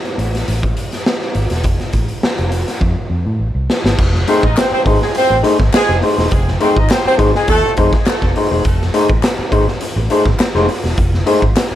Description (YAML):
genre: funk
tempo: 103 BPM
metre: 4/4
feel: straight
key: unclear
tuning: A4 = 440 Hz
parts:
  - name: raw garage drum kit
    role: drums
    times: 0.1-11.7 s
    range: crash cymbal, hi-hat, kick drum, snare drum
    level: -16 LUFS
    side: equal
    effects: none
  - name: vintage muted fingered electric bass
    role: bass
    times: 0.2-11.7 s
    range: E1 to A2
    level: -18 LUFS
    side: equal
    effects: none
  - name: clear horn section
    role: second line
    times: 4.3-7.7 s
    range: G#3 to Eb5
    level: -17 LUFS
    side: right 1 dB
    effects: tape echo
  - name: hollow-body jazz guitar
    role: accompaniment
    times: 4.3-11.6 s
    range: A3 to C5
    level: -15 LUFS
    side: left 2 dB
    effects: none
  - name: group handclap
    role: percussion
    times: 4.6-11.7 s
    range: none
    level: -26 LUFS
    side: left 5 dB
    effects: none
room: light reverb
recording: none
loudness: -12 LUFS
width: side -12 dB against mid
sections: 0.0-4.0 A section; 4.0-11.8 B section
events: drum fill 2.8-4.0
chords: 0.0 F; 4.0 F7#9